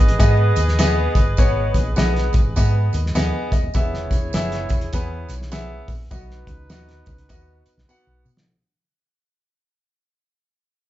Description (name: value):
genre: uptempo 1960s-style soul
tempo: 101 BPM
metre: 4/4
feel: swing 62% on 8ths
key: B major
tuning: A4 = 440 Hz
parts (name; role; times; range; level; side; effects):
- warm horn section; second line; 0.0-8.2 s; D#4 to D#5; -28 LUFS; right 1 dB; none
- hollow-body short-scale fingered electric bass; bass; 0.0-8.4 s; D#1 to B2; -22 LUFS; equal; none
- cloth-damped thuddy drum kit; drums; 0.1-8.5 s; hi-hat, kick drum, snare drum; -20 LUFS; equal; none
- congas; percussion; 0.1-8.4 s; none; -33 LUFS; right 1 dB; none
- warm concert grand piano; accompaniment; 0.2-8.3 s; B3 to G#5; -26 LUFS; left 2 dB; none
- tambourine; percussion; 0.2-8.4 s; none; -38 LUFS; right 8 dB; none
room: light reverb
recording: band playing live in one room, nothing above 7.8 kHz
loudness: -17 LUFS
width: side -14 dB against mid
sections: 0.0-8.5 A section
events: fade-out 0.0-8.5; grand piano fill 2.9-3.7; drum fill 7.9-8.5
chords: 0.0 G#m; 3.7 E; 6.1 B